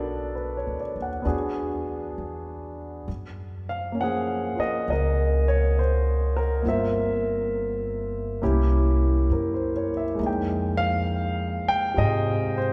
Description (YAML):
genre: jazz ballad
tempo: 68 BPM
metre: 4/4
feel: swing 66% on 8ths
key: unclear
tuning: A4 = 440 Hz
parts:
  - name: warm upright piano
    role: accompaniment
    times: 0.0-12.7 s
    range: C3 to G5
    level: -28 LUFS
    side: equal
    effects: none
  - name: upright bass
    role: bass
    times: 0.0-12.7 s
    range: G1 to Ab2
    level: -29 LUFS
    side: equal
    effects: none
room: wet church reverb, RT60 3.7 s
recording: recorded in a church or concert hall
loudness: -25 LUFS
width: mono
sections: 0.0-12.7 A section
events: none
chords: 0.0 Bm7; 1.2 E9; 3.1 Gbmaj9; 6.6 Gm7; 8.4 C7b9; 10.2 Fm11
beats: 0.35 1.25 2.16 | 3.07 3.97 4.87 5.76 | 6.64 7.53 8.41 9.30 | 10.18 11.07 11.96